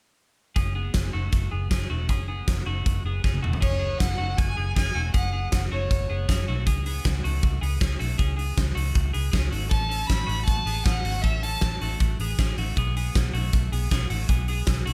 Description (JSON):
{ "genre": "jangly indie pop", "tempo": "157 BPM", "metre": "4/4", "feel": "straight", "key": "unclear", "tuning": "A4 = 435 Hz", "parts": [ { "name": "twelve-string electric guitar", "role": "arpeggios", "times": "0.6-14.9 s", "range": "A3 to A4", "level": "-36 LUFS", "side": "equal", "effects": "none" }, { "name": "vintage muted fingered electric bass", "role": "bass", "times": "0.6-14.9 s", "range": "E1 to C#2", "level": "-29 LUFS", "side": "equal", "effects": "none" }, { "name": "big rock drum kit", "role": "drums", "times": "0.6-14.9 s", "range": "crash cymbal, hi-hat, kick drum, snare drum, toms", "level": "-28 LUFS", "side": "equal", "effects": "none" }, { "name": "rich violin", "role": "melody", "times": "3.6-6.4, 9.7-11.8 s", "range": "C#5 to B5", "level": "-33 LUFS", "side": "equal", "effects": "none" } ], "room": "light reverb", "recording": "none", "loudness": "-25 LUFS", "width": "mono", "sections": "0.6-3.6 A section; 3.6-14.9 B section", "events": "drum fill 3.2-3.6", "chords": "0.6 F#sus2; 6.7 C#5; 12.8 B5", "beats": "| 0.56 0.95 1.33 1.71 | 2.09 2.48 2.86 3.24 | 3.62 4.00 4.38 4.76 | 5.15 5.53 5.91 6.29 | 6.67 7.05 7.43 7.81 | 8.19 8.57 8.96 9.34 | 9.72 10.10 10.48 10.86 | 11.24 11.62 12.00 12.38 | 12.77 13.15 13.53 13.91 | 14.29 14.67" }